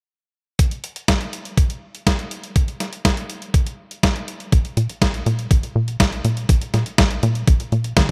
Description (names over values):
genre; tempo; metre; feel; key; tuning
italo disco; 122 BPM; 4/4; straight; unclear; A4 = 442 Hz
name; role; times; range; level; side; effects
clean 12-bit digital drum machine; drums; 0.6-8.1 s; hi-hat, snare drum, toms; -24 LUFS; equal; none
electronic kick drum; drums; 0.6-8.1 s; none; -20 LUFS; equal; none
tight sequencer bass; bass; 4.5-8.1 s; Bb1 to Bb2; -23 LUFS; equal; tube saturation
room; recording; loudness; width
little or no reverb; none; -20 LUFS; mono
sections
0.6-8.1 A section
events
none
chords
none